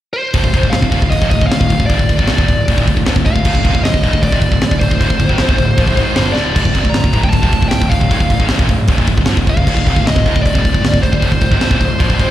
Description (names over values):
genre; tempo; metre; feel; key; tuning
heavy metal; 154 BPM; 4/4; straight; D phrygian; A4 = 440 Hz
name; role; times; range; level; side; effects
high-gain lead guitar; melody; 0.1-12.3 s; C5 to Bb5; -19 LUFS; equal; distortion, slapback echo, digital delay
high-gain distorted guitar; riff; 0.3-12.3 s; D2 to G#3; -19 LUFS; left 7 dB; distortion, slapback echo
high-gain distorted guitar; riff; 0.3-12.3 s; D2 to G#3; -20 LUFS; right 7 dB; distortion, slapback echo
fuzz picked electric bass; bass; 0.3-12.3 s; D1 to Bb1; -18 LUFS; equal; overdrive
tight metal drum kit; drums; 0.3-12.3 s; crash cymbal, hi-hat, kick drum, snare drum; -14 LUFS; equal; none
room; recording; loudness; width
small room reverb; live gig heard through the venue's PA, recital hall reverb; -11 LUFS; side -13 dB against mid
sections
0.3-12.3 A section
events
drum fill 6.4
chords
0.3 Dm